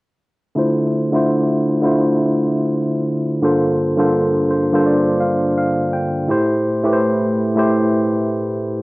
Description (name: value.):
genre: hip hop.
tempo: 84 BPM.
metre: 4/4.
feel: swing 60% on 16ths.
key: D minor.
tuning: A4 = 440 Hz.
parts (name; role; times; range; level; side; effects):
tine electric piano; accompaniment; 0.6-8.8 s; G2 to G5; -15 LUFS; equal; medium stereo tremolo, high-pass filter, low-pass filter, cassette tape.
room: wet booth ambience, RT60 0.2 s.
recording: home recording on cassette.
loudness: -15 LUFS.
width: side -22 dB against mid.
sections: 0.6-8.8 A section.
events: filter sweep on tine electric piano 0.6-8.8; tine electric piano fill 4.1-6.3.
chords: 0.6 Dm9; 3.4 Gm11; 6.3 Am7.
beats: | 0.57 1.28 2.00 2.71 | 3.42 4.14 4.85 5.57 | 6.28 7.00 7.71 8.42.